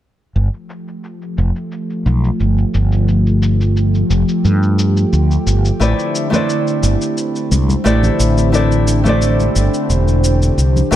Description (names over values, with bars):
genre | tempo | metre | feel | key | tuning
sunset chillout | 88 BPM | 4/4 | straight | unclear | A4 = 440 Hz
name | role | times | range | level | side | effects
lush unison pad | sustained chords | 0.4-11.0 s | D3 to G4 | -19 LUFS | equal | chorus
mellow fretless electric bass | bass | 0.4-11.0 s | E1 to G2 | -14 LUFS | equal | tube saturation
cabasa | drums | 0.4-11.0 s | none | -27 LUFS | left 2 dB | low-pass filter on perc
nylon-string guitar | accompaniment | 5.8-11.0 s | A3 to D5 | -17 LUFS | moving between left 3 dB and right 5 dB | auto-pan, ping-pong delay
congas | percussion | 6.3-10.9 s | none | -23 LUFS | left 2 dB | none
room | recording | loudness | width
light reverb, small room ambience | dark, warm production | -13 LUFS | side -12 dB against mid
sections
0.4-11.0 A section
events
filter sweep on drum 0.4-11.0; filter sweep on analog synth pad 0.4-11.0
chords
0.4 G7sus2; 5.8 Am11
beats
| 0.36 1.04 1.72 2.40 | 3.08 3.77 4.45 5.13 | 5.81 6.49 7.17 7.86 | 8.54 9.22 9.90 10.58